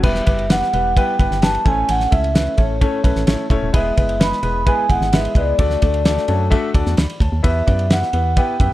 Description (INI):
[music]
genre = uptempo 1960s-style soul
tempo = 130 BPM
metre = 4/4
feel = straight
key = unclear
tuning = A4 = 440 Hz
[part]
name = vibraphone with soft mallets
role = melody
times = 0.0-8.7 s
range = C#5 to B5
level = -20 LUFS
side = right 1 dB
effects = slapback echo, plate reverb
[part]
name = warm concert grand piano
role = accompaniment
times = 0.0-8.7 s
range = G3 to B5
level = -23 LUFS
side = left 3 dB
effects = none
[part]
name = organ-like FM bass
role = bass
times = 0.0-8.7 s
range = D#1 to F#2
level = -21 LUFS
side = equal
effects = none
[part]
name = cloth-damped thuddy drum kit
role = drums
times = 0.0-8.7 s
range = crash cymbal, kick drum, ride cymbal, snare drum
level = -17 LUFS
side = equal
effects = none
[sound]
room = light reverb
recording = dark, warm production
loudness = -15 LUFS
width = side -15 dB against mid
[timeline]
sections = 0.0-8.7 A section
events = none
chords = 0.0 Em; 1.7 A; 3.7 E; 5.6 D; 7.4 Em